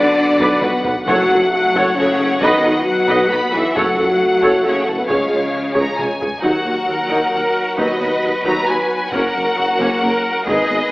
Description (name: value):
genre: cinematic, epic orchestral film score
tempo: 134 BPM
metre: 3/4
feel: straight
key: F# minor, Eb minor from 6.4 s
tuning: A4 = 440 Hz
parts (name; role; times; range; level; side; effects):
- warm symphonic violin section; melody; 0.0-10.9 s; D#5 to A#5; -23 LUFS; left 1 dB; none
- warm symphonic violin section; second line; 0.0-10.9 s; Gb4 to B5; -22 LUFS; left 1 dB; none
- warm symphonic viola section; accompaniment; 0.0-10.8 s; Gb3 to D#5; -21 LUFS; equal; none
- clear trombone section; sustained chords; 0.0-10.9 s; Db3 to B3; -26 LUFS; right 1 dB; none
- mellow French horn section; sustained chords; 0.0-10.9 s; A3 to B4; -21 LUFS; left 1 dB; none
- rich symphonic cello section; bass; 0.0-10.9 s; A2 to B4; -22 LUFS; equal; none
- rich symphonic double bass section; bass; 0.0-10.8 s; F#1 to Eb2; -32 LUFS; right 1 dB; none
- warm tuba; bass; 0.0-10.8 s; F#1 to Eb2; -25 LUFS; right 1 dB; none
- taiko ensemble; drums; 0.4-10.9 s; none; -31 LUFS; equal; none
- timpani; percussion; 1.1-1.7, 3.8-4.4, 6.4-8.4 s; F#2 to Eb3; -35 LUFS; equal; none
room: moderate scoring stage reverb, RT60 1.6 s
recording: AM radio sound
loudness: -14 LUFS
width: side -20 dB against mid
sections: 0.0-6.4 A section; 6.4-10.9 B section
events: drum fill 0.4-1.1, 5.8-6.4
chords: 0.0 Bm; 1.1 F#m; 2.4 B; 3.8 F#m; 5.1 C#; 6.4 Ebm; 7.8 B/D#; 9.1 Gb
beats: 0.17 0.62 | 1.07 1.52 1.97 | 2.42 2.86 3.31 | 3.76 4.21 4.66 | 5.10 5.55 6.00 | 6.45 6.89 7.34 | 7.79 8.23 8.68 | 9.13 9.58 10.02 | 10.47